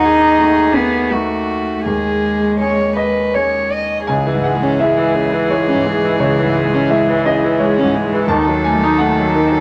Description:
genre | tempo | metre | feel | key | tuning
neoclassical piano and strings | 79-88 BPM | 3/4 | rubato | C# minor | A4 = 440 Hz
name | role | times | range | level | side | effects
warm violin | melody | 0.0-9.6 s | F#4 to D#5 | -22 LUFS | equal | none
warm cello | second line | 0.0-9.6 s | D#3 to D#4 | -20 LUFS | equal | none
clear concert grand piano | accompaniment | 0.0-9.6 s | C#2 to A5 | -20 LUFS | equal | none
warm viola | accompaniment | 4.1-9.6 s | C#3 to D#4 | -20 LUFS | equal | none
room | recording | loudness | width
moderate studio reverb, RT60 0.5 s | none | -15 LUFS | mono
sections
0.0-4.1 A section; 4.1-9.6 B section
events
none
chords
0.0 D#dim; 1.8 G#sus4/D#; 4.1 C#m; 8.3 D#dim

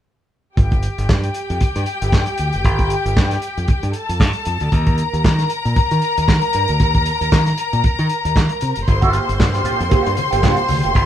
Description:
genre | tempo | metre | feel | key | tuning
disco | 116 BPM | 4/4 | swing 56% on 16ths | G minor | A4 = 443 Hz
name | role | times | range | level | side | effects
rich studio string section | second line | 0.6-11.1 s | G4 to C6 | -21 LUFS | left 3 dB | none
modern bright fingered electric bass | bass | 0.6-11.1 s | F1 to Eb3 | -20 LUFS | equal | none
warm soul drum kit | drums | 0.6-11.1 s | handclaps, hi-hat, kick drum, snare drum | -17 LUFS | equal | none
mellow electric guitar | accompaniment | 8.9-11.0 s | Bb3 to G4 | -20 LUFS | right 5 dB | wah, spring reverb
congas | percussion | 8.9-11.1 s | none | -26 LUFS | left 2 dB | none
room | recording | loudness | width
moderate studio reverb, RT60 0.5 s | band playing live in one room | -15 LUFS | side -11 dB against mid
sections
0.6-11.1 A section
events
none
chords
0.6 G5; 4.7 Eb5; 8.9 Gm7

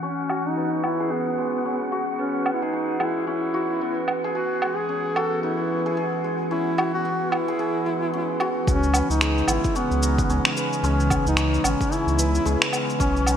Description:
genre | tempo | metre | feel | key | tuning
organic downtempo | 111 BPM | 4/4 | swing 59% on 16ths | C# minor | A4 = 444 Hz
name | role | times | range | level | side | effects
mellow duduk | melody | 0.0-13.4 s | B3 to A4 | -26 LUFS | equal | digital delay
warbly tape-like pad | sustained chords | 0.0-13.4 s | C#3 to G#4 | -31 LUFS | equal | chorus, built-in reverb, sidechain pumping
santur | arpeggios | 0.0-13.4 s | G#3 to B4 | -27 LUFS | equal | digital delay
wind-like tuned noise texture | texture | 0.0-8.7 s | F#5 | -37 LUFS | right 4 dB | built-in reverb, lush chorus
electronic woodblock, shaker and finger snaps | drums | 0.3-13.4 s | none | -25 LUFS | right 1 dB | overdrive, gated reverb
warm sub bass | bass | 8.7-13.3 s | G#1 to C#2 | -23 LUFS | equal | tube saturation, sidechain pumping
electronic kick drum | drums | 8.7-13.1 s | none | -25 LUFS | equal | none
room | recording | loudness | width
moderate lush hall reverb, RT60 2.8 s | bright 1980s-style digital production, low-pass filter | -21 LUFS | side -9 dB against mid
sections
0.0-8.7 A section; 8.7-13.4 B section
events
filter sweep on ambient pad 0.0-8.7; filter sweep 0.0-8.7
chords
0.0 C#m7

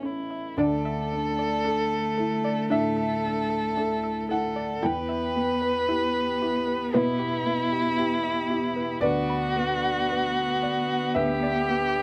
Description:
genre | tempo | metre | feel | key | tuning
neoclassical piano and strings | 57 BPM | 4/4 | rubato | D major | A4 = 440 Hz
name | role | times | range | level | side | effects
muted violin | melody | 0.0-12.0 s | E4 to B4 | -29 LUFS | equal | none
muted cello | second line | 0.0-12.0 s | A3 to B3 | -34 LUFS | equal | none
dark upright piano | accompaniment | 0.0-12.0 s | A1 to G5 | -32 LUFS | equal | none
soft round pluck | arpeggios | 0.0-12.0 s | D4 to B5 | -36 LUFS | equal | chorus, tape echo
room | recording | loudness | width
light reverb | close, detailed microphones | -26 LUFS | mono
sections
0.6-12.0 A section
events
none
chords
0.0 Aadd9; 0.6 Dsus2; 4.8 Em; 9.0 Bm/D

